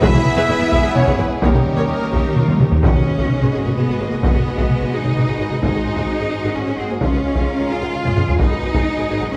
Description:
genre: cinematic, epic orchestral film score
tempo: 129 BPM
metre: 3/4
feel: straight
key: G# dorian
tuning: A4 = 440 Hz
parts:
  - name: warm symphonic violin section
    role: melody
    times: 0.0-9.4 s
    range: E#4 to E5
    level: -34 LUFS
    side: equal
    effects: none
  - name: large flute ensemble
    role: second line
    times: 0.0-2.4 s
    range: G4 to E5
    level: -27 LUFS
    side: equal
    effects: none
  - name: warm symphonic violin section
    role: second line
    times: 0.0-9.4 s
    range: G4 to G#5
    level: -33 LUFS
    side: equal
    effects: none
  - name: warm symphonic viola section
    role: accompaniment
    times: 0.0-9.4 s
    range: B3 to C#5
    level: -30 LUFS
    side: equal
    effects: none
  - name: bright trombone section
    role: sustained chords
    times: 0.0-9.4 s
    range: G#2 to C#4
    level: -31 LUFS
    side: equal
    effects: none
  - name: dark French horn section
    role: sustained chords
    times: 0.0-9.4 s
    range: F#3 to C#5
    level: -31 LUFS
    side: equal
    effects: none
  - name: rich symphonic string section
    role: sustained chords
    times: 0.0-9.4 s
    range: F#3 to E#5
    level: -30 LUFS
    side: equal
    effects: none
  - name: rich symphonic cello section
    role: bass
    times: 0.0-9.4 s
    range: D#2 to E#4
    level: -25 LUFS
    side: equal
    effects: none
  - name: warm symphonic double bass section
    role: bass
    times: 0.0-9.4 s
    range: E1 to D#2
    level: -28 LUFS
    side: equal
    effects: none
  - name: taiko ensemble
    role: drums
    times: 0.0-9.2 s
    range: none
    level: -20 LUFS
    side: equal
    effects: none
  - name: timpani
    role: percussion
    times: 1.4-2.8 s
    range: D#3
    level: -26 LUFS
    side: equal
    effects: none
room: moderate scoring stage reverb, RT60 2.0 s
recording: none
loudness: -18 LUFS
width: mono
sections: 0.0-2.8 A section; 2.8-9.4 B section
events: timpani fill 1.4-2.8; drum fill 2.5-2.8, 8.1-8.4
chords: 0.0 E; 1.4 D#7; 2.8 G#m7; 5.6 G#7; 7.0 C#; 8.4 G#m7

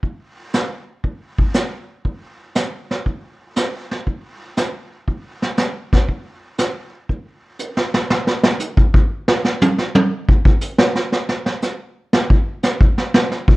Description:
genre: jazz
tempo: 119 BPM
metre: 4/4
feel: swing 68% on 8ths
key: none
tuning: none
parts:
  - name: vintage brush drum kit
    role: drums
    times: 0.0-13.6 s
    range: brushed snare drum, hi-hat, kick drum, snare drum, toms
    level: -15 LUFS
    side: equal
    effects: none
room: light reverb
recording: worn, warbling old tape, cassette tape, warbly pitch drift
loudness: -17 LUFS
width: side -20 dB against mid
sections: 0.0-8.1 A section; 8.1-13.6 B section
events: drum fill 7.6-8.1; drum solo 8.1-13.6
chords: none

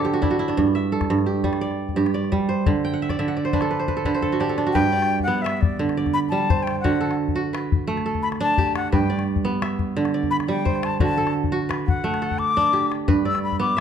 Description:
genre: west african traditional, West African string and xylophone music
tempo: 115 BPM (dotted quarters)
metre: 12/8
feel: straight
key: G major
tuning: A4 = 440 Hz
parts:
  - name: jazz flute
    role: melody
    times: 0.0-0.1, 4.7-13.8 s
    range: D5 to E6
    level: -24 LUFS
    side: left 5 dB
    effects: none
  - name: kora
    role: arpeggios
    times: 0.0-13.8 s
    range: G2 to G5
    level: -21 LUFS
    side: right 3 dB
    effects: none
  - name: calabash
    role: percussion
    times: 0.1-13.6 s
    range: none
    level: -26 LUFS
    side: left 5 dB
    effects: none
room: moderate recital hall reverb, RT60 1.3 s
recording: dark, warm production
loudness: -20 LUFS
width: side -8 dB against mid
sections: 0.0-4.7 A section; 4.7-13.8 B section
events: kora fill 0.0-0.6, 2.8-4.7; drum fill 3.9-4.7, 12.4-13.1; flute solo 4.7-13.8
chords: 0.0 D5; 0.6 G5; 2.7 D13; 4.7 G; 6.8 D; 8.9 G; 11.0 D; 13.1 G

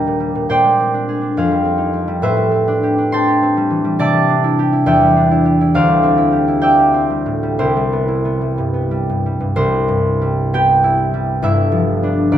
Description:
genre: classical, solo harp piece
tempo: 59-71 BPM (dotted quarters)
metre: 6/8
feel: rubato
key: C major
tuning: A4 = 440 Hz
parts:
  - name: concert harp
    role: solo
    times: 0.0-12.4 s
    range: G1 to C6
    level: -13 LUFS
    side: equal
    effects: none
room: light reverb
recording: close, detailed microphones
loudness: -13 LUFS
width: side -10 dB against mid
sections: 0.0-9.6 A section; 9.6-12.4 A section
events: none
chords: 0.0 Ebmaj7; 0.5 Bb9; 1.4 Fm9; 2.2 Am11; 4.0 Cmaj9; 4.9 Em7; 5.7 Dm11; 7.6 Cmaj7; 11.4 G7

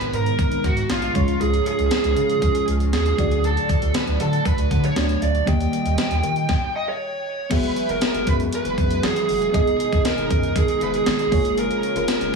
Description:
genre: 1980s-style pop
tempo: 118 BPM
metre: 4/4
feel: straight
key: unclear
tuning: A4 = 442 Hz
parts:
  - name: smooth overdriven lead guitar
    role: melody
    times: 0.0-12.4 s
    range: E#4 to G5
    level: -23 LUFS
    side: right 3 dB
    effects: digital delay, shimmer reverb
  - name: mellow FM electric piano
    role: accompaniment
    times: 0.0-12.4 s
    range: G#2 to E5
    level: -27 LUFS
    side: left 2 dB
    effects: chorus, phaser, shimmer reverb
  - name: string machine, violas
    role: sustained chords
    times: 0.0-12.4 s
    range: G#2 to A#4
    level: -28 LUFS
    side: equal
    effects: ensemble chorus
  - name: round analog bass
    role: bass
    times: 0.0-12.3 s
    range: E#1 to D#3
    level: -24 LUFS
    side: right 1 dB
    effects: none
  - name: gated 80s digital drum machine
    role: drums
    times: 0.0-12.3 s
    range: crash cymbal, hi-hat, kick drum, snare drum, tambourine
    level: -23 LUFS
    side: equal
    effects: gated reverb, gated reverb snare
room: light reverb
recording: small room ambience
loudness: -18 LUFS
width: side -4 dB against mid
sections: 0.0-7.5 A section; 7.5-12.4 B section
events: stop 6.5-7.5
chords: 0.0 G#madd9; 1.2 C#; 3.2 D; 5.5 D#; 7.5 Eadd9/F#; 9.5 G#m/F#; 11.3 A#m7/F#

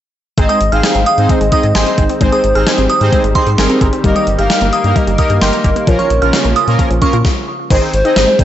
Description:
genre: synth-pop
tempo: 131 BPM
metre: 4/4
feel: straight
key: Ab major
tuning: A4 = 440 Hz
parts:
  - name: hollow clarinet-like synth lead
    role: melody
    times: 0.4-8.4 s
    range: C5 to F5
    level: -17 LUFS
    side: equal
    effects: chorus, analog delay
  - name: analog synth brass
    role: accompaniment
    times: 0.4-8.4 s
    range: Bb3 to Eb5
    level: -19 LUFS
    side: right 1 dB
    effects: chorus
  - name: lush unison pad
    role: sustained chords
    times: 0.6-7.2 s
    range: Db3 to C4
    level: -21 LUFS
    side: equal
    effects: chorus
  - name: wide unison pluck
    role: arpeggios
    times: 0.4-8.4 s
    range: Eb3 to Ab5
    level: -21 LUFS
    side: left 1 dB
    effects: auto-pan, analog delay
  - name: round analog bass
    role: bass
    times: 0.4-8.4 s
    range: G1 to Bb2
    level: -16 LUFS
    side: equal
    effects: none
  - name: gated 80s digital drum machine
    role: drums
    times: 0.4-8.4 s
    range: crash cymbal, hi-hat, kick drum, snare drum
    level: -15 LUFS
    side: equal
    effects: gated reverb, gated reverb snare, overdrive
  - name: glassy synth bell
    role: second line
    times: 0.5-7.2 s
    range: C6 to F6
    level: -19 LUFS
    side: right 3 dB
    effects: chorus, phaser, analog delay
room: light reverb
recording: dry, gritty hardware recording, nothing above 8.0 kHz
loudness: -10 LUFS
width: side -11 dB against mid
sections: 0.4-7.7 A section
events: stop 7.2-7.7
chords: 0.4 Ab; 4.0 Eb/G; 5.9 Bbm; 7.7 Ab

